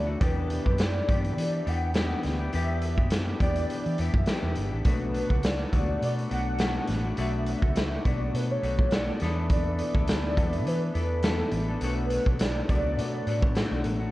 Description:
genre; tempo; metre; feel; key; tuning
indie pop, bedroom pop; 103 BPM; 4/4; swing 55% on 16ths; B minor; A4 = 440 Hz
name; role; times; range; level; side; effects
warbly nostalgic lead; melody; 0.0-13.8 s; A4 to F#5; -33 LUFS; equal; tremolo, ensemble chorus, analog delay
clean electric guitar; accompaniment; 0.0-14.1 s; B2 to A4; -33 LUFS; left 3 dB; lush chorus, vibrato effect
mellow accordion; sustained chords; 0.0-14.1 s; D3 to G4; -40 LUFS; equal; none
vintage muted fingered electric bass; bass; 0.0-14.1 s; G1 to E3; -30 LUFS; equal; none
raw garage drum kit; drums; 0.2-14.0 s; hi-hat, kick drum, snare drum; -28 LUFS; equal; none
room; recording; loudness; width
light reverb, small room ambience; worn, warbling old tape, cassette tape, warbly pitch drift; -24 LUFS; side -17 dB against mid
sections
0.0-14.1 A section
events
none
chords
0.2 Em7; 4.9 Bm7; 9.2 E7sus4; 11.8 Bm7

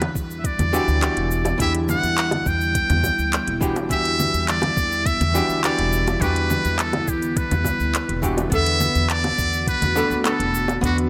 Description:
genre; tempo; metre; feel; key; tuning
sunset chillout; 104 BPM; 4/4; straight; E minor; A4 = 441 Hz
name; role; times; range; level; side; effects
trumpet with metal mute; melody; 0.0-11.0 s; F#4 to G5; -25 LUFS; equal; delay
archtop guitar, miked and amplified; accompaniment; 0.0-11.1 s; E3 to B4; -28 LUFS; equal; none
ethereal airy pad; sustained chords; 0.0-11.1 s; D3 to F#4; -32 LUFS; equal; ensemble chorus, built-in reverb
upright bass; bass; 0.0-11.1 s; E1 to E2; -27 LUFS; equal; none
smooth R&B drum kit; drums; 0.0-11.1 s; congas, handclaps, hi-hat, shaker; -29 LUFS; equal; none
bongos; percussion; 0.0-10.8 s; none; -30 LUFS; equal; none
electronic kick drum; drums; 0.2-10.9 s; none; -28 LUFS; equal; none
room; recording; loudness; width
light reverb; none; -21 LUFS; mono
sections
0.0-11.1 A section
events
none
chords
0.0 Em9; 8.5 Bm7/E

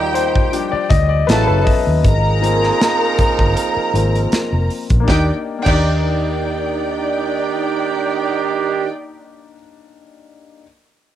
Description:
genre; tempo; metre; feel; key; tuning
lush 1970s-style soul; 79 BPM; 4/4; swing 54% on 16ths; Eb major; A4 = 440 Hz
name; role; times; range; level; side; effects
warm studio string section; second line; 0.0-8.9 s; Eb4 to Bb5; -21 LUFS; equal; cassette tape
warm grand piano; accompaniment; 0.0-10.6 s; F3 to E5; -22 LUFS; left 8 dB; cassette tape
clear trombone section; stabs; 0.0-8.9 s; Bb2 to Ab4; -22 LUFS; right 9 dB; cassette tape
vintage muted fingered electric bass; bass; 0.0-9.6 s; F1 to Eb2; -18 LUFS; equal; none
modern studio drum kit; drums; 0.2-5.9 s; crash cymbal, hi-hat, kick drum, snare drum; -18 LUFS; equal; cassette tape
room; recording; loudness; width
light reverb, small room ambience; home recording on cassette; -14 LUFS; side -11 dB against mid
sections
0.0-5.1 A section; 5.1-8.1 B section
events
grand piano solo 0.0-5.1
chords
0.0 Ebmaj7; 1.3 A69; 2.0 Ab69; 5.1 Ebmaj7

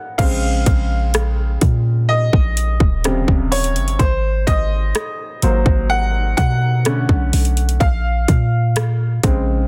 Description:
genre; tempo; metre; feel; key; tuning
contemporary R&B; 63 BPM; 4/4; straight; Bb minor; A4 = 440 Hz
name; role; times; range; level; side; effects
clear baby grand piano; accompaniment; 0.0-9.7 s; C3 to Gb5; -24 LUFS; equal; none
warm 808-style bass; bass; 0.2-9.7 s; Eb1 to Cb3; -20 LUFS; equal; none
trap drum kit; drums; 0.2-9.5 s; crash cymbal, hi-hat, kick drum, rim click; -20 LUFS; equal; none
room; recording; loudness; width
little or no reverb; dense, heavily limited modern master; -17 LUFS; mono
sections
0.2-9.7 A section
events
break 0.0; grand piano solo 0.2-9.7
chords
0.2 Bbm9; 3.0 Eb13; 4.0 Ab9; 6.9 Bm9; 7.8 Bbm9

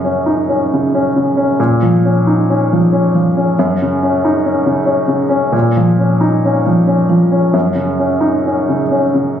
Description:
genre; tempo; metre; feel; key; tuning
neoclassical minimalist piano; 90 BPM; 3/4; rubato; F# major; A4 = 440 Hz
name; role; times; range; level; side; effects
clear upright piano; solo; 0.0-9.4 s; F#2 to D#4; -11 LUFS; equal; none
room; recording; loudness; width
light reverb; recorded on a phone in the room, club reverb, nothing above 7.8 kHz; -11 LUFS; side -9 dB against mid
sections
0.0-9.4 A section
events
none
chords
0.0 F#5; 1.6 A#m; 3.6 F#5; 5.5 A#m; 7.5 F#5

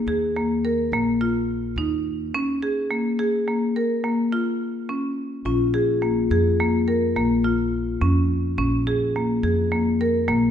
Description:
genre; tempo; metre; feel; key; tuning
contemporary instrumental, chamber music in an uneven meter; 212 BPM (eighths); 11/8; straight; Bb minor; A4 = 440 Hz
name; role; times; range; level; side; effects
upright bass; bass; 0.0-10.5 s; Bb1 to F2; -26 LUFS; right 1 dB; none
marimba with hard mallets; arpeggios; 0.1-10.4 s; Bb3 to Bb4; -21 LUFS; equal; none
vibraphone with soft mallets; second line; 5.5-10.5 s; F4; -28 LUFS; left 12 dB; none
room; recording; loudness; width
moderate concert hall reverb, RT60 1.8 s; minimal, uncompressed stereo recording; -20 LUFS; side -9 dB against mid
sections
0.0-5.5 A section; 5.5-10.5 B section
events
none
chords
0.0 Absus2 (rootless); 2.3 Bbm7; 5.5 Bb5

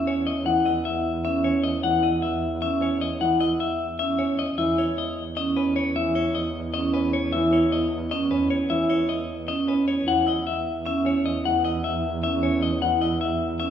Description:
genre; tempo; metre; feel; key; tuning
classical, minimalist pattern music; 306 BPM (eighths); 7/8; straight; unclear; A4 = 440 Hz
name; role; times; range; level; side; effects
clean electric guitar; melody; 0.0-13.7 s; B4 to F#5; -26 LUFS; left 6 dB; none
vibraphone with hard mallets; arpeggios; 0.0-13.7 s; C#4 to E4; -27 LUFS; right 4 dB; none
warm double bass; bass; 0.0-13.7 s; E2; -29 LUFS; right 2 dB; none
dark grand piano; accompaniment; 0.1-13.1 s; E3 to C#4; -28 LUFS; right 1 dB; none
room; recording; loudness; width
wet recital hall reverb, RT60 1.7 s; recorded in a church or concert hall; -21 LUFS; side -9 dB against mid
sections
0.0-13.7 A section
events
none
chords
none

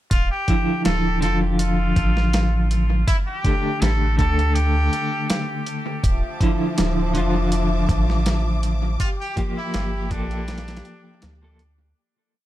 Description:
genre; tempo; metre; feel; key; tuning
trip hop; 81 BPM; 4/4; swing 54% on 16ths; D minor; A4 = 441 Hz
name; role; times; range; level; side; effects
trumpet with straight mute; melody; 0.1-11.6 s; D4 to A4; -27 LUFS; equal; tape echo
soft dub sub bass; bass; 0.1-11.9 s; D1 to D2; -21 LUFS; equal; none
dusty soul sampler-style drum kit; drums; 0.1-11.8 s; hi-hat, kick drum, snare drum; -23 LUFS; equal; studio reverb, analog delay
clean electric guitar; accompaniment; 0.5-11.6 s; D3 to A4; -24 LUFS; left 1 dB; tremolo, vintage 12-bit sampler grit, tape echo
rich symphonic string section; sustained chords; 6.0-11.9 s; F3 to D6; -30 LUFS; left 1 dB; none
room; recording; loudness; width
digital ambience; echo-heavy mix; -18 LUFS; side -14 dB against mid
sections
0.1-12.0 groove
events
fade-out 8.0-12.0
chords
0.1 Dmadd9; 3.1 A7sus4; 6.0 Dmadd9; 9.0 Gm7

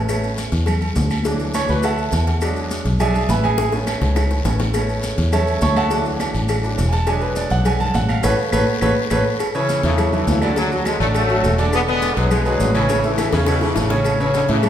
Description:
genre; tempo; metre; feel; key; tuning
latin, salsa; 206 BPM; 4/4; straight; A major; A4 = 440 Hz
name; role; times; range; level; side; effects
bright concert grand piano; accompaniment; 0.0-14.7 s; C#3 to C#6; -21 LUFS; right 1 dB; none
fingered electric bass; bass; 0.0-14.7 s; E1 to A2; -20 LUFS; equal; none
agogo bells and timbales; percussion; 0.1-14.7 s; none; -29 LUFS; right 5 dB; none
claves; percussion; 0.1-14.7 s; none; -35 LUFS; left 2 dB; none
congas; percussion; 0.1-14.7 s; none; -28 LUFS; left 1 dB; none
cowbell and bongos; percussion; 0.1-14.7 s; none; -28 LUFS; left 3 dB; none
guiro; percussion; 0.1-14.7 s; none; -36 LUFS; left 4 dB; none
maracas; percussion; 0.1-14.7 s; none; -35 LUFS; left 2 dB; none
brilliant trombone section; melody; 9.6-14.7 s; A2 to B3; -22 LUFS; left 2 dB; none
edgy saxophone section; second line; 13.3-14.1 s; B2 to C#3; -26 LUFS; equal; none
room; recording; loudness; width
wet recital hall reverb, RT60 1.8 s; recorded in a church or concert hall; -16 LUFS; side -10 dB against mid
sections
0.0-9.4 A section; 9.4-14.7 B section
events
grand piano solo 0.0-9.4; drum fill 3.6-4.7, 8.2-9.4, 13.2-14.1; band accent 8.2-9.4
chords
0.0 Aadd9; 1.3 Dadd9; 2.4 E7; 3.6 Aadd9; 5.9 Dadd9; 7.1 E7; 8.2 Aadd9; 9.4 A; 10.6 Dadd9; 11.7 E7; 12.9 A

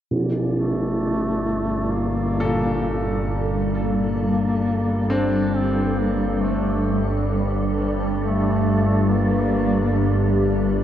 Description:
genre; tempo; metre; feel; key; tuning
dark ambient drone; 67 BPM; 4/4; straight; G minor; A4 = 440 Hz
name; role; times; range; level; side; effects
granular cloud pad; sustained chords; 1.8-10.8 s; G3 to A4; -25 LUFS; left 1 dB; built-in reverb
overtone-sweeping drone; drone; 0.7-10.8 s; G1 to G2; -23 LUFS; right 1 dB; chorus, built-in reverb
wind-like tuned noise texture; texture; 0.3-10.8 s; D5; -35 LUFS; left 1 dB; built-in reverb
mellow duduk; melody; 0.6-10.5 s; A3 to D4; -25 LUFS; left 1 dB; tape echo
bright grand piano; arpeggios; 2.4-10.8 s; Bb2 to A4; -30 LUFS; left 1 dB; tape echo
room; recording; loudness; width
wet cathedral reverb, RT60 7.0 s; dark, warm production; -19 LUFS; side -10 dB against mid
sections
0.1-10.8 A section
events
none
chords
0.1 Gm

